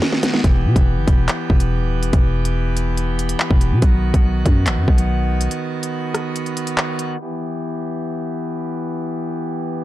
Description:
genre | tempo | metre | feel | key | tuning
hip hop, drill | 142 BPM | 4/4 | half-time | E harmonic minor | A4 = 441 Hz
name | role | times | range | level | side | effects
pipe organ, full organ | sustained chords | 0.0-9.8 s | D#3 to G4 | -24 LUFS | equal | none
drill drum kit | drums | 0.0-7.1 s | handclaps, hi-hat, kick drum, rim click, snare drum | -17 LUFS | equal | none
growling 808-style bass | bass | 0.4-5.5 s | D#1 to B2 | -18 LUFS | equal | none
room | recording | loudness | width
digital ambience | dark, warm production, low-pass filter | -17 LUFS | side -15 dB against mid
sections
0.0-7.2 A section; 7.2-9.8 B section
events
drum fill 0.0-0.4; break 5.5-7.2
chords
0.4 Em; 3.8 B; 7.2 Em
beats
0.02 | 0.44 0.86 1.29 1.71 | 2.13 2.56 2.98 3.40 | 3.82 4.25 4.67 5.09 | 5.51 5.93 6.36 6.78 | 7.20 7.62 8.05 8.47 | 8.89 9.31 9.74

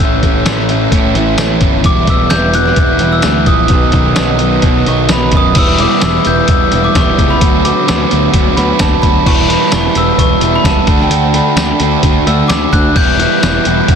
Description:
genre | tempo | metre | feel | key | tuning
indie rock | 130 BPM | 4/4 | straight | E dorian | A4 = 439 Hz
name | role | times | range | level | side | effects
glockenspiel with soft plastic mallets | melody | 0.0-13.4 s | G5 to G6 | -16 LUFS | equal | digital delay
overdriven semi-hollow guitar | riff | 0.0-14.0 s | A2 to F#4 | -13 LUFS | right 1 dB | none
fuzz picked electric bass | bass | 0.0-14.0 s | E1 to B2 | -16 LUFS | equal | overdrive
trip hop sampler-style drum kit | drums | 0.0-14.0 s | crash cymbal, hi-hat, kick drum, snare drum, tambourine | -13 LUFS | equal | none
room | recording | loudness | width
light reverb, digital ambience | dense, heavily limited modern master | -9 LUFS | side -7 dB against mid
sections
0.0-5.6 A section; 5.6-14.0 B section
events
none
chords
0.0 A; 1.9 Em; 3.7 B; 5.6 Em; 7.4 Bm/D; 9.3 Em; 10.9 D; 13.0 Em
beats
| 0.01 0.47 0.94 1.40 | 1.86 2.33 2.79 3.25 | 3.72 4.18 4.64 5.11 | 5.57 6.03 6.49 6.96 | 7.42 7.88 8.34 8.81 | 9.27 9.73 10.19 10.65 | 11.12 11.58 12.04 12.51 | 12.97 13.43 13.89

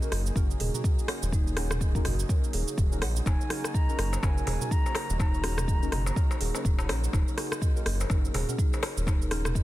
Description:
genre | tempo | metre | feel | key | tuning
afro house | 124 BPM | 4/4 | swing 58% on 16ths | Eb minor | A4 = 439 Hz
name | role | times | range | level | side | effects
warm analog pad | sustained chords | 0.0-9.6 s | Db3 to Bb4 | -40 LUFS | right 2 dB | wide subtle chorus, sidechain pumping
deep mellow chord stab | stabs | 0.0-9.6 s | Db4 to Bb4 | -40 LUFS | left 4 dB | chorus, phaser, sidechain pumping, dub echo
afro-pop drum kit | drums | 0.0-9.6 s | hi-hat, rim click, shaker, toms | -34 LUFS | right 1 dB | small room reverb, soft clipping on snare
buzzing kalimba | arpeggios | 0.1-9.6 s | Eb4 to Eb5 | -39 LUFS | right 2 dB | sidechain pumping, dub echo
round analog bass | bass | 0.1-9.6 s | Eb1 to Bb1 | -30 LUFS | equal | sidechain pumping
electronic kick drum | drums | 0.4-9.6 s | none | -26 LUFS | equal | small room reverb
bansuri | melody | 3.0-6.6 s | Gb5 to Bb5 | -38 LUFS | equal | dub echo
darbuka | percussion | 3.3-9.2 s | none | -38 LUFS | left 4 dB | none
room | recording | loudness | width
little or no reverb | dense, heavily limited modern master | -25 LUFS | side -16 dB against mid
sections
0.0-9.6 A section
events
none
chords
0.0 Ebm7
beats
0.36 0.84 | 1.33 1.81 2.29 2.78 | 3.26 3.75 4.23 4.71 | 5.20 5.68 6.17 6.65 | 7.13 7.62 8.10 8.58 | 9.07 9.55

